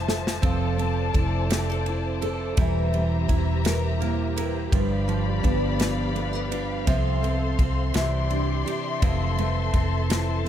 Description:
six-eight pop ballad; 56 BPM (dotted quarters); 6/8; straight; F major; A4 = 440 Hz
nylon-string guitar; accompaniment; 0.0-10.5 s; G2 to Bb4; -29 LUFS; right 1 dB; double-tracked left and right
muted studio string section; sustained chords; 0.0-10.5 s; F3 to C6; -31 LUFS; left 5 dB
vintage muted fingered electric bass; bass; 0.0-10.5 s; E1 to C2; -26 LUFS; equal
natural country drum kit; drums; 0.1-10.5 s; kick drum, ride cymbal, snare drum; -25 LUFS; equal
picked steel-string acoustic guitar; arpeggios; 0.4-10.5 s; E3 to A4; -32 LUFS; right 7 dB
small room ambience; -22 LUFS; side -10 dB against mid
0.0-10.5 A section
drum fill 0.0-0.4
0.0 Fmaj7; 2.6 C7/E; 4.7 G7; 6.9 F/C; 8.0 Cadd9; 9.0 Fmaj7

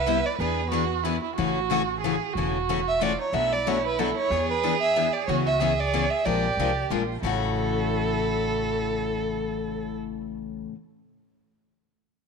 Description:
acoustic string swing (jazz manouche); 184 BPM; 3/4; swing 60% on 8ths; A major; A4 = 437 Hz
warm violin; melody; 0.0-0.7, 2.9-10.0 s; A4 to E5; -26 LUFS; right 3 dB
dark violin; second line; 0.0-9.9 s; D#4 to B4; -30 LUFS; right 10 dB
upright bass; bass; 0.0-10.6 s; E1 to E2; -32 LUFS; equal
picked steel-string acoustic guitar; accompaniment; 0.1-10.8 s; A2 to Bb4; -28 LUFS; left 11 dB
moderate echo chamber reverb, RT60 1.9 s, small room ambience; 1960s-style stereo with parts hard left and right; -23 LUFS; side -5 dB against mid
0.0-3.3 A section; 3.3-7.2 B section; 7.2-9.2 C section
0.4 E7; 1.4 A6; 3.3 Bm7; 4.3 E7; 5.3 C#m7; 6.3 Bb9; 7.2 A6

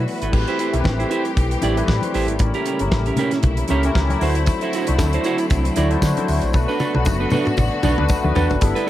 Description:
disco; 116 BPM; 4/4; swing 56% on 16ths; A4 = 440 Hz
barky tine electric piano; accompaniment; 0.0-8.9 s; G3 to C6; -24 LUFS; left 4 dB; overdrive, analog chorus
clean electric guitar; accompaniment; 0.0-8.9 s; C#4 to D5; -23 LUFS; right 5 dB
clear studio string section; sustained chords; 0.0-8.9 s; Bb2 to B4; -26 LUFS; left 1 dB
hollow-body short-scale fingered electric bass; bass; 0.0-8.7 s; F#1 to D3; -21 LUFS; equal
damped 70s drum kit; drums; 0.1-8.9 s; crash cymbal, hi-hat, kick drum, snare drum, toms; -22 LUFS; equal
congas; percussion; 0.3-8.8 s; -29 LUFS; left 4 dB
tambourine; percussion; 4.5-8.9 s; -39 LUFS; right 3 dB
light reverb; -17 LUFS; side -13 dB against mid
0.3-8.6 A section
drum fill 6.5-8.6; tine electric piano fill 7.1-8.6
0.3 Am7; 2.4 A7b9; 4.2 D9; 6.5 Bm7

